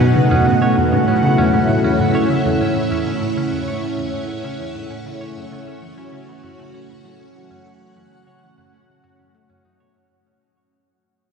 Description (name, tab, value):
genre	ambient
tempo	98 BPM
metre	4/4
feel	straight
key	unclear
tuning	A4 = 439 Hz
part	string machine, full ensemble	sustained chords	0.0-10.0 s	A3 to F#5	-19 LUFS	equal	phaser, ensemble chorus
part	clean electric guitar	arpeggios	0.0-9.9 s	C#3 to C#5	-28 LUFS	right 1 dB	auto-pan, tape echo
part	analog pluck	riff	0.0-9.9 s	E2 to A3	-20 LUFS	equal	chorus, tape echo
part	bubbling stepped-filter texture	texture	0.0-10.0 s	F#5	-24 LUFS	right 6 dB	chorus, built-in reverb
room	wet cathedral reverb, RT60 7.3 s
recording	in a vast, echoing space, nothing above 10.5 kHz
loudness	-15 LUFS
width	side -6 dB against mid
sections	0.0-10.0 A section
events	fade-out on synth arpeggio sound 0.0-10.0; fade-out on clean electric guitar 0.0-10.0; fade-out 0.0-10.0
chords	0.2 A; 5.1 F#m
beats	| 0.16 0.77 1.38 2.00 | 2.61 3.22 3.83 4.45 | 5.06 5.67 6.28 6.89 | 7.51 8.12 8.73 9.34